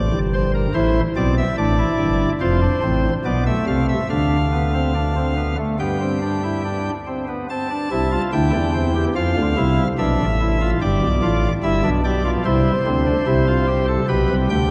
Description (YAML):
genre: classical, baroque-style 3-part fugue for pipe organ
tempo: 72 BPM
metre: 4/4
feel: straight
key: C major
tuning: A4 = 439 Hz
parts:
  - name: pipe organ, cornet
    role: solo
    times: 0.0-14.7 s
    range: F1 to A5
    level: -19 LUFS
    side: equal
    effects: none
room: wet cathedral reverb, RT60 5.5 s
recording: dark, warm production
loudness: -19 LUFS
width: mono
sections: 0.0-7.5 A section; 7.5-14.7 B section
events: none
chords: 0.0 C; 0.8 Am; 2.4 F; 4.1 Dm7; 5.8 G; 7.5 C; 9.2 Dm; 10.8 G; 12.5 C; 14.1 G/B